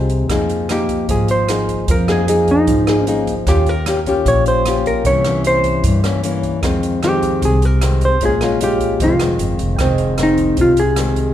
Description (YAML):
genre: bossa nova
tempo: 152 BPM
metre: 4/4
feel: straight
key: F minor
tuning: A4 = 440 Hz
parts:
  - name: hollow-body jazz guitar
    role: melody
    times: 0.0-11.3 s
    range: Eb4 to Db5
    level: -17 LUFS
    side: right 1 dB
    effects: none
  - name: nylon-string guitar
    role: accompaniment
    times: 0.0-11.3 s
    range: F2 to Ab4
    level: -18 LUFS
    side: left 3 dB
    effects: none
  - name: upright bass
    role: bass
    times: 0.0-11.3 s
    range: F1 to G2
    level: -19 LUFS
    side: right 1 dB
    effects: none
  - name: open jazz drum kit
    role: drums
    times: 0.1-11.3 s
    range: hi-hat, kick drum, rim click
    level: -23 LUFS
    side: right 1 dB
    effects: none
  - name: warm grand piano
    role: accompaniment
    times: 9.8-11.3 s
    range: Ab4 to G5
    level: -26 LUFS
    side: right 9 dB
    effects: none
room: light reverb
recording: none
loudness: -13 LUFS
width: side -11 dB against mid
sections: 0.0-9.8 A section; 9.8-11.3 A section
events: none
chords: 0.3 Absus2; 3.5 Eb9; 5.1 C7b9; 6.6 Fm7; 8.2 Bbm7; 9.0 Fm7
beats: | 0.30 0.70 1.09 1.49 | 1.89 2.28 2.68 3.07 | 3.47 3.87 4.26 4.66 | 5.05 5.45 5.84 6.24 | 6.63 7.03 7.42 7.82 | 8.21 8.61 9.00 9.40 | 9.79 10.19 10.58 10.98